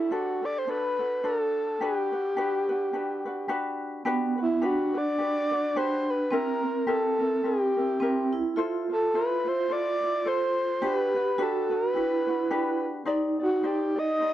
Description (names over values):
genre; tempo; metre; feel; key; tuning
Hawaiian; 106 BPM; 4/4; swing 57% on 8ths; G major; A4 = 442 Hz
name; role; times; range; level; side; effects
breathy flute-like synth lead; melody; 0.0-14.3 s; E4 to Eb5; -26 LUFS; equal; chorus
ukulele; accompaniment; 0.0-14.3 s; C4 to D5; -32 LUFS; left 3 dB; none
vibraphone with medium mallets; second line; 4.1-14.3 s; B3 to G4; -29 LUFS; right 4 dB; none
room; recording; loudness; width
light reverb; dry, close 1970s-style studio recording; -24 LUFS; side -13 dB against mid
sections
0.0-4.1 A section; 4.1-14.3 A section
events
none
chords
0.0 D7sus4; 0.7 D7; 1.8 Gmaj7; 6.3 C7; 8.6 Fmaj7; 10.8 Gmaj7; 13.1 Cmadd9